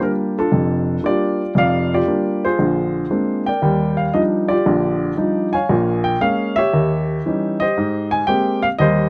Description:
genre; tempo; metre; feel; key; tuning
solo jazz; 116 BPM; 4/4; swing 69% on 8ths; Bb major, Eb major from 3.6 s; A4 = 440 Hz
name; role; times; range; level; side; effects
warm upright piano; solo; 0.0-9.1 s; F1 to Ab5; -18 LUFS; equal; none
room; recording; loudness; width
little or no reverb; close, detailed microphones; -18 LUFS; mono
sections
0.0-3.6 A section; 3.6-9.1 B section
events
none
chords
0.0 Bb6; 2.6 Bb9; 3.6 Ebmaj9; 5.7 Bbm7; 6.7 Eb7b9; 7.8 Abmaj9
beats
0.00 0.52 1.03 | 1.55 2.07 2.59 3.10 | 3.62 4.14 4.66 5.17 | 5.69 6.21 6.72 7.24 | 7.76 8.27 8.79

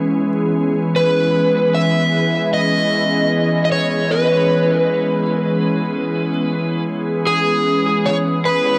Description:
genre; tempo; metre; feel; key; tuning
ambient; 76 BPM; 4/4; straight; C# minor; A4 = 440 Hz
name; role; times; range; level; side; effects
soft additive organ-like pad; sustained chords; 0.0-8.8 s; E3 to G#4; -20 LUFS; equal; ensemble chorus, built-in reverb
overdriven slide guitar; melody; 1.0-8.8 s; G#4 to E5; -20 LUFS; equal; dub echo
room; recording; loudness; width
moderate spring reverb, RT60 1.6 s; echo-heavy mix, vinyl crackle; -17 LUFS; mono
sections
0.0-8.8 A section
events
none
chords
0.0 C#m7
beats
0.17 | 0.95 1.74 2.53 3.32 | 4.11 4.90 5.69 6.48 | 7.27 8.06

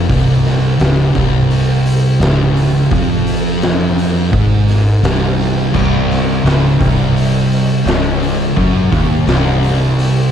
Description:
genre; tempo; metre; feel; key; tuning
stoner and doom metal; 85 BPM; 4/4; straight; C minor; A4 = 437 Hz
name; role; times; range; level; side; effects
thick fuzz guitar; riff; 0.0-10.3 s; C2 to Ab2; -17 LUFS; left 8 dB; distortion
thick fuzz guitar; riff; 0.0-10.3 s; C2 to Ab2; -15 LUFS; right 6 dB; distortion
fingered electric bass; bass; 0.0-10.3 s; C1 to Ab1; -20 LUFS; left 1 dB; overdrive
oversized low-tuned drum kit; drums; 0.1-10.1 s; crash cymbal, hi-hat, kick drum, snare drum; -18 LUFS; left 1 dB; none
biting overdriven guitar; riff; 5.7-10.3 s; C2 to F#2; -19 LUFS; left 1 dB; none
room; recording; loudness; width
small room ambience; dark, warm production; -11 LUFS; side -9 dB against mid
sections
0.0-10.3 A section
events
none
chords
0.0 Cm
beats
| 0.09 0.80 1.50 2.21 | 2.92 3.62 4.33 5.03 | 5.74 6.44 7.15 7.86 | 8.56 9.27 9.98

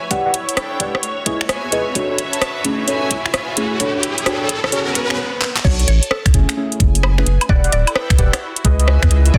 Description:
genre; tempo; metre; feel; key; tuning
UK garage, two-step garage; 130 BPM; 4/4; swing 64% on 16ths; unclear; A4 = 440 Hz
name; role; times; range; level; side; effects
soft string machine; sustained chords; 0.0-5.2 s; C#5; -31 LUFS; equal; phaser, ensemble chorus, sidechain pumping
riser and swell; sound effects; 0.9-5.6 s; none; -28 LUFS; equal; none
rich symphonic string section; texture; 0.0-9.4 s; D4 to A5; -30 LUFS; equal; sidechain pumping
deep mellow chord stab; stabs; 0.1-9.4 s; A3 to F#5; -25 LUFS; equal; chorus, phaser, delay
saturated sub bass; bass; 0.1-9.4 s; D1 to E2; -18 LUFS; equal; sidechain pumping, high-pass filter
electronic kick drum; drums; 0.1-9.4 s; none; -18 LUFS; equal; high-pass filter on kick
garage drum kit; drums; 0.1-9.3 s; crash cymbal, finger snaps, handclaps, hi-hat, rim click, woodblock; -22 LUFS; equal; soft clipping on snare
mallet-like synth pluck; melody; 5.6-9.4 s; A4 to D5; -28 LUFS; equal; chorus, phaser, dub echo
room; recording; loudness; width
light reverb, digital ambience; dense, heavily limited modern master; -17 LUFS; mono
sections
0.0-5.6 A section; 5.6-9.4 B section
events
build-up 0.0-5.6; filter sweep on synth stab 0.0-5.6; riser 0.9-5.2; swell 4.7-5.6; drum fill 5.4; drop 5.6-9.4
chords
0.1 Em9; 1.0 C#m9; 2.0 Bm9; 2.6 F#m9; 3.8 Em9; 4.7 C#m7; 5.6 Bm9; 6.3 F#m9; 7.5 Em9; 8.4 C#m9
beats
| 0.11 0.57 1.03 1.49 | 1.95 2.42 2.88 3.34 | 3.80 4.26 4.72 5.18 | 5.65 6.11 6.57 7.03 | 7.49 7.95 8.41 8.88 | 9.34

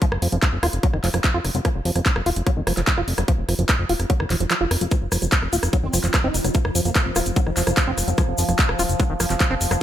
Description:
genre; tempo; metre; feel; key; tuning
psychedelic trance; 147 BPM; 4/4; straight; unclear; A4 = 440 Hz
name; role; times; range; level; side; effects
liquid acid bass; riff; 0.0-9.7 s; Eb3 to F4; -26 LUFS; equal; chorus, auto-pan, sidechain pumping, ping-pong delay
big-room dance drum kit; drums; 0.0-9.8 s; handclaps, hi-hat, rim click; -24 LUFS; equal; overdrive
electronic kick drum; drums; 0.0-9.5 s; none; -20 LUFS; equal; none
fat analog bass; bass; 0.1-9.8 s; Eb1 to F1; -24 LUFS; equal; none
overtone-sweeping drone; sustained chords; 5.5-9.8 s; F3; -28 LUFS; right 1 dB; chorus, built-in reverb, sidechain pumping
tube shaker; percussion; 4.9-9.8 s; none; -29 LUFS; left 4 dB; none
formant-sweep wobble bass; second line; 5.8-7.0 s; Bb3 to Eb4; -34 LUFS; right 5 dB; analog chorus, cassette tape, sidechain pumping, high-pass filter, tape echo
room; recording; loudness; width
light reverb; none; -18 LUFS; side -11 dB against mid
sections
0.0-9.8 A section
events
filter sweep on acid bass 0.0-9.8; kick drops out 4.5-4.9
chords
0.0 F5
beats
| 0.02 0.42 0.83 1.24 | 1.65 2.06 2.47 2.87 | 3.28 3.69 4.10 4.51 | 4.92 5.32 5.73 6.14 | 6.55 6.96 7.36 7.77 | 8.18 8.59 9.00 9.40 | 9.81

